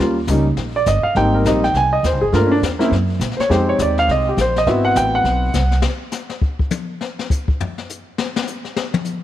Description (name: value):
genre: jazz piano trio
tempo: 205 BPM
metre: 4/4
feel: swing 61% on 8ths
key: unclear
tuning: A4 = 439 Hz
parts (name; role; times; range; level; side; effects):
- warm baby grand piano; melody; 0.0-5.7 s; G3 to Ab5; -16 LUFS; equal; none
- upright bass; bass; 0.0-5.8 s; G1 to Bb2; -19 LUFS; equal; none
- jazz brush drum kit; drums; 0.3-9.1 s; brushed snare drum, hi-hat, kick drum, snare drum, toms; -23 LUFS; left 3 dB; none
room: light reverb, small room ambience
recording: 1960s-style stereo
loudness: -15 LUFS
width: side -12 dB against mid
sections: 0.0-5.8 A section; 5.8-9.2 A section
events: grand piano solo 0.0-5.8; drum solo 5.8-9.2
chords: 0.0 Eb7; 1.2 Abmaj7; 2.3 Gm7; 2.9 Gb; 3.5 Fm7; 4.7 Ab7alt; 5.8 N.C.